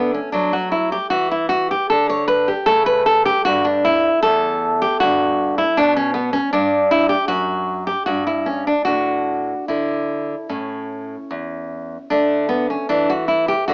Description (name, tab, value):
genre	classical, baroque-style dance for nylon-string guitar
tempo	76 BPM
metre	4/4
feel	uneven beats, rubato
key	D major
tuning	A4 = 440 Hz
part	nylon-string guitar	solo	0.0-13.7 s	E2 to C#5	-19 LUFS	equal	none
room	moderate small room reverb, RT60 0.6 s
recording	home recording on cassette, small speaker sound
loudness	-19 LUFS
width	mono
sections	0.0-13.7 A section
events	none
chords	0.0 D; 2.7 A; 5.8 B5; 8.9 Asus4; 10.5 A; 12.1 D5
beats	0.34 1.13 1.91 | 2.68 3.47 4.24 5.01 | 5.78 6.54 7.29 8.07 | 8.87 9.69 10.51 11.32 | 12.13 12.92 13.71